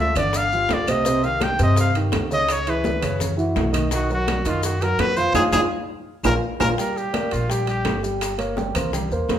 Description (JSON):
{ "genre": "Afro-Cuban jazz", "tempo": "168 BPM", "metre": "4/4", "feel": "straight", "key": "unclear", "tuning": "A4 = 441 Hz", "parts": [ { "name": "warm trumpet", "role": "melody", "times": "0.0-8.0 s", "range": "F4 to G5", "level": "-23 LUFS", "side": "left 1 dB", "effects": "none" }, { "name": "dark upright piano", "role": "accompaniment", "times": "0.0-9.4 s", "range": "C3 to G5", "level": "-24 LUFS", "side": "right 2 dB", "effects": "none" }, { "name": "upright bass", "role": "bass", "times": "0.0-9.4 s", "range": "G1 to G2", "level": "-25 LUFS", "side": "left 1 dB", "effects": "none" }, { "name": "bongos", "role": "percussion", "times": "0.2-9.4 s", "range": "none", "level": "-32 LUFS", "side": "left 5 dB", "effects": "none" }, { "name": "claves", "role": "percussion", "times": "0.2-8.9 s", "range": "none", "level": "-35 LUFS", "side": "left 4 dB", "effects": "none" }, { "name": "congas", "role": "percussion", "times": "0.2-9.4 s", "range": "none", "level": "-30 LUFS", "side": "left 2 dB", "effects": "none" }, { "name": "maracas", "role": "percussion", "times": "0.2-9.4 s", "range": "none", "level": "-36 LUFS", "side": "left 4 dB", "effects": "none" }, { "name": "timbales", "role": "percussion", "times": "0.2-9.4 s", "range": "none", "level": "-29 LUFS", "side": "right 5 dB", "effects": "none" } ], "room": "moderate large studio reverb, RT60 1.2 s", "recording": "band playing live in one room", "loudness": "-19 LUFS", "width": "side -10 dB against mid", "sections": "0.0-6.8 A section; 6.8-9.4 B section", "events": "band accent 5.3-6.8; drum fill 5.7-6.8; trumpet solo 6.8-9.4", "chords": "0.3 G5; 1.1 Cm; 2.5 Dbm7; 3.2 Gb5; 3.9 Bmaj7; 5.3 Fm7; 6.1 Bb5; 6.8 Gm; 8.2 Gdim" }